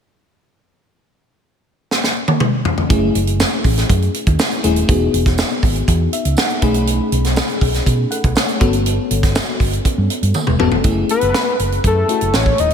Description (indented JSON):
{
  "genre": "polished 1980s jazz-funk pop",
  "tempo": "121 BPM",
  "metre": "4/4",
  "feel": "straight",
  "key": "F# dorian",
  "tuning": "A4 = 440 Hz",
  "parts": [
    { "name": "tight funk drum kit", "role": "drums", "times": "1.9-12.7 s", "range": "hi-hat, kick drum, snare drum, toms", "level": "-17 LUFS", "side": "right 1 dB", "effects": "none" },
    { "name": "bell-like FM electric piano", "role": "accompaniment", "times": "2.9-12.7 s", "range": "A3 to B5", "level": "-20 LUFS", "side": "left 3 dB", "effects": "tremolo, analog chorus, slapback echo" },
    { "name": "hollow-body short-scale fingered electric bass", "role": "bass", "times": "2.9-12.7 s", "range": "D#1 to B2", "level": "-18 LUFS", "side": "right 1 dB", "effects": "none" },
    { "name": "tambourine", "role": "percussion", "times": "3.4-10.5 s", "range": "none", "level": "-34 LUFS", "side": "right 6 dB", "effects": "none" },
    { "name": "fat analog lead", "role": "melody", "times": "11.1-12.7 s", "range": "A4 to D#5", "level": "-16 LUFS", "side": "left 3 dB", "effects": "chorus, slapback echo" }
  ],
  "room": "light reverb, small room ambience",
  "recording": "none",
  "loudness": "-14 LUFS",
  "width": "side -7 dB against mid",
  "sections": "0.9-2.9 A section; 2.9-10.8 B section; 10.8-12.7 C section",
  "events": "drum fill 1.9-2.9, 10.3-10.8; FM electric piano fill 5.9-6.9",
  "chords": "0.9 N.C.; 2.9 F#m7; 4.9 Emaj9; 6.6 B13; 8.6 Gmaj9#11; 10.8 F#m7"
}